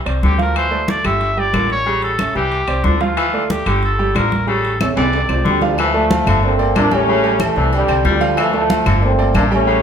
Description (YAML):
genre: latin, salsa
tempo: 184 BPM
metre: 4/4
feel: straight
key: D minor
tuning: A4 = 440 Hz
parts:
  - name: upright bass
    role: bass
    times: 0.0-9.8 s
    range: G1 to D2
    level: -20 LUFS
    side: equal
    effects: none
  - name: clear concert grand piano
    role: accompaniment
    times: 0.1-9.8 s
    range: F3 to G5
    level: -22 LUFS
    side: right 3 dB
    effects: none
  - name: claves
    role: percussion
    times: 0.1-9.5 s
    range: none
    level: -30 LUFS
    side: left 5 dB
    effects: none
  - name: congas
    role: percussion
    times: 0.1-9.8 s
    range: none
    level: -23 LUFS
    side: left 1 dB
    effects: none
  - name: timbales and agogo bells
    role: percussion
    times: 0.1-9.7 s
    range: none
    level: -26 LUFS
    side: right 3 dB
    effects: none
  - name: clear trumpet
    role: melody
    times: 0.2-5.6 s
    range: D4 to E5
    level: -20 LUFS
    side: equal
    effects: none
  - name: raspy baritone saxophone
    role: second line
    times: 0.2-9.8 s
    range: C3 to G3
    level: -22 LUFS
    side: left 4 dB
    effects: none
  - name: mellow trombone section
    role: melody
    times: 5.5-9.8 s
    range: D3 to D4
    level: -17 LUFS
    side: equal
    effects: none
room: moderate large studio reverb, RT60 1.1 s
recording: band playing live in one room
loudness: -14 LUFS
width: side -7 dB against mid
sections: 0.0-5.8 A section; 5.8-9.8 B section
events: drum fill 4.8-5.8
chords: 0.0 Csus2; 0.6 Dm; 1.2 Gmadd9; 1.9 A7; 2.5 Csus2; 3.2 Dm; 3.8 Gmadd9; 4.5 A7; 5.1 Csus2; 5.8 Dm; 6.4 Gmadd9; 7.1 A7; 7.7 Csus2; 8.4 Dm; 9.0 Gmadd9